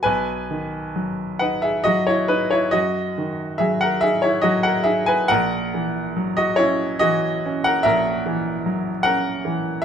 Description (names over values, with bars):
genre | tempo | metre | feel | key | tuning
classical, romantic nocturne for solo piano | 43-50 BPM (dotted quarters) | 12/8 | rubato | B major | A4 = 442 Hz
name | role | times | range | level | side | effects
clear baby grand piano | solo | 0.0-9.8 s | A#1 to G#5 | -18 LUFS | equal | none
room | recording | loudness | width
moderate studio reverb, RT60 0.6 s | none | -18 LUFS | side -8 dB against mid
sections
0.1-9.8 A section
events
none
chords
0.1 B; 5.3 F#7/A#